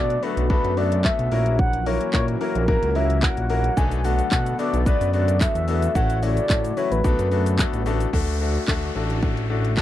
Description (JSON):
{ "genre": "dance-pop", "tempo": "110 BPM", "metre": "4/4", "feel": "straight", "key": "unclear", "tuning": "A4 = 440 Hz", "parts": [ { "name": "mellow horn-like synth lead", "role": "melody", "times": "0.0-7.9 s", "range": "A#4 to G#5", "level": "-26 LUFS", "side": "equal", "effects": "chorus, tape echo" }, { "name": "clear concert grand piano", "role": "accompaniment", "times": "0.0-9.8 s", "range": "A3 to B4", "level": "-27 LUFS", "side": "left 6 dB", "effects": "sidechain pumping" }, { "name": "chorused pulse-width pad", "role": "sustained chords", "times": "0.0-9.8 s", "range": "C#3 to F#4", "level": "-33 LUFS", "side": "left 1 dB", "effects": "sidechain pumping" }, { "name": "fat analog bass", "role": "bass", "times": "0.0-9.8 s", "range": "A1 to B2", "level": "-23 LUFS", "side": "equal", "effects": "sidechain pumping" }, { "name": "house drum kit", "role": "drums", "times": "0.1-9.8 s", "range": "handclaps, hi-hat, kick drum, shaker", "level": "-23 LUFS", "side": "equal", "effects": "none" }, { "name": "downlifter", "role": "sound effects", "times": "8.1-9.8 s", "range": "none", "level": "-34 LUFS", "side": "equal", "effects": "none" } ], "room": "little or no reverb", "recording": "dry, close 1970s-style studio recording", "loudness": "-19 LUFS", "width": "side -13 dB against mid", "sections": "0.0-8.1 A section; 8.1-9.8 B section", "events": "none", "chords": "0.0 Bm7; 1.3 F#7/A#; 3.8 Bm7; 6.0 A6; 7.0 Bm7; 8.1 D" }